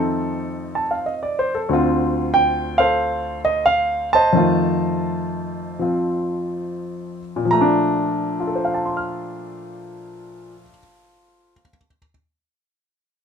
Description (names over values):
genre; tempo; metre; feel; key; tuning
solo jazz; 66-95 BPM; 4/4; swing 69% on 8ths; Bb major; A4 = 442 Hz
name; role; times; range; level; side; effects
warm baby grand piano; solo; 0.0-12.1 s; D2 to F6; -19 LUFS; equal; none
room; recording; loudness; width
moderate studio reverb, RT60 0.6 s; minimal, uncompressed stereo recording; -18 LUFS; side -6 dB against mid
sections
0.0-7.5 A section; 7.5-11.1 B section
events
slowing down 1.7-7.5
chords
0.0 F7; 1.7 Dm7; 4.3 F7; 7.5 Bbmaj7